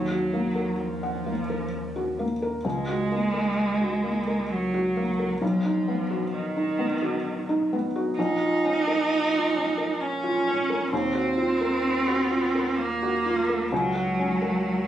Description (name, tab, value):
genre	neoclassical piano and strings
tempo	65 BPM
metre	3/4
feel	rubato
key	unclear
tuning	A4 = 440 Hz
part	warm cello	second line	0.0-14.9 s	D#3 to Eb4	-26 LUFS	right 2 dB	none
part	felt-muted upright piano	accompaniment	0.0-14.9 s	Bb1 to Gb5	-27 LUFS	left 1 dB	none
part	warm sub bass	bass	0.0-14.9 s	Bb1 to Eb2	-40 LUFS	equal	none
room	light reverb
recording	recorded on a phone in the room, studio ambience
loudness	-23 LUFS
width	side -11 dB against mid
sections	0.0-14.9 A section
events	none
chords	0.0 Ebmadd9; 2.6 Gb/Db; 5.4 B; 8.2 Bbm; 10.9 Ebmadd9; 13.7 Gb/Db